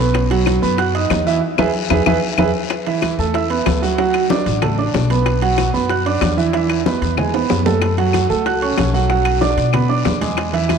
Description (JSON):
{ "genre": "latin, salsa", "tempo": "188 BPM", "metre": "4/4", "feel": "straight", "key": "unclear", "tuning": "A4 = 440 Hz", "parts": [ { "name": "warm concert grand piano", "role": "accompaniment", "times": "0.0-10.8 s", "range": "E3 to F#6", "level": "-17 LUFS", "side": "right 6 dB", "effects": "cassette tape" }, { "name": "upright bass", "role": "bass", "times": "0.0-10.8 s", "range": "A1 to B2", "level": "-20 LUFS", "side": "left 3 dB", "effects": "none" }, { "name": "bongos", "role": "percussion", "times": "0.1-10.8 s", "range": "none", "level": "-26 LUFS", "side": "left 14 dB", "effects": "none" }, { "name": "claves", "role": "percussion", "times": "0.1-10.8 s", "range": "none", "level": "-27 LUFS", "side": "left 14 dB", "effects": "none" }, { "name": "congas", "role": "percussion", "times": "0.1-10.8 s", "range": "none", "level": "-25 LUFS", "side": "left 4 dB", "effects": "none" }, { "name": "timbales", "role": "percussion", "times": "0.1-10.8 s", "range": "none", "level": "-28 LUFS", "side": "right 8 dB", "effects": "none" }, { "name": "guiro", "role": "percussion", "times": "0.2-10.8 s", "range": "none", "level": "-31 LUFS", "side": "left 15 dB", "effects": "none" } ], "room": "moderate lush hall reverb, RT60 2.8 s", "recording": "home recording on cassette", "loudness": "-14 LUFS", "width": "side -6 dB against mid", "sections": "0.0-2.7 A section; 2.7-10.8 A section", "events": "drum fill 1.4-2.7, 7.2-7.8; band accent 1.4-2.7", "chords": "0.1 B; 1.4 E; 2.7 Asus2; 4.0 D; 5.3 Bm; 6.5 E5; 7.2 E; 7.8 F#m; 9.1 Bm" }